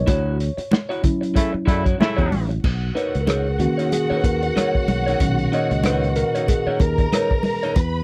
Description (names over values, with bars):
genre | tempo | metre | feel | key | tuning
lush 1970s-style soul | 94 BPM | 4/4 | swing 58% on 16ths | B major | A4 = 440 Hz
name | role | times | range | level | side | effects
tine electric piano | accompaniment | 0.0-7.8 s | A#2 to D#5 | -26 LUFS | equal | overdrive
fingered electric bass | bass | 0.0-8.0 s | A1 to F#2 | -25 LUFS | equal | none
electric guitar through a small old amp | riff | 0.1-7.7 s | D#4 to D5 | -28 LUFS | equal | none
vintage drum kit | drums | 0.1-7.9 s | crash cymbal, hi-hat, kick drum, rim click, snare drum | -23 LUFS | equal | none
congas | percussion | 0.1-7.9 s | none | -29 LUFS | equal | none
mellow horn section | stabs | 1.4-2.5 s | C#3 to E4 | -27 LUFS | equal | none
warm symphonic violin section | second line | 2.6-8.0 s | F#4 to B5 | -30 LUFS | equal | none
room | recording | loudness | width
little or no reverb | dry, close 1970s-style studio recording | -20 LUFS | mono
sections
0.0-2.6 A section; 2.6-8.0 B section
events
tine electric piano solo 0.0-2.6, 2.6-8.0; band accent 0.1-2.6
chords
0.1 Dmaj9; 2.6 Bmaj9